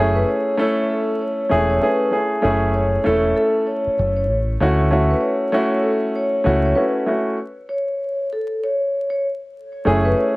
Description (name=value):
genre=hip hop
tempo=97 BPM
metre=4/4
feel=swing 61% on 16ths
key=F# minor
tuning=A4 = 440 Hz
part: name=warm grand piano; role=accompaniment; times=0.0-10.4 s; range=A3 to A4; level=-19 LUFS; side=equal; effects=cassette tape, high-pass filter, low-pass filter
part: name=deep dub fingered electric bass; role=bass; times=0.0-10.1 s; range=E1 to D2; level=-20 LUFS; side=equal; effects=none
part: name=vibraphone with soft mallets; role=melody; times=0.1-10.4 s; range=A4 to C#5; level=-22 LUFS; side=left 1 dB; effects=high-pass filter, low-pass filter, cassette tape
room=light reverb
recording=home recording on cassette, vinyl crackle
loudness=-17 LUFS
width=side -23 dB against mid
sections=0.0-9.9 A section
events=stop 7.4-9.9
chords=0.0 F#m7; 4.6 Dmaj7 (rootless); 9.9 F#m7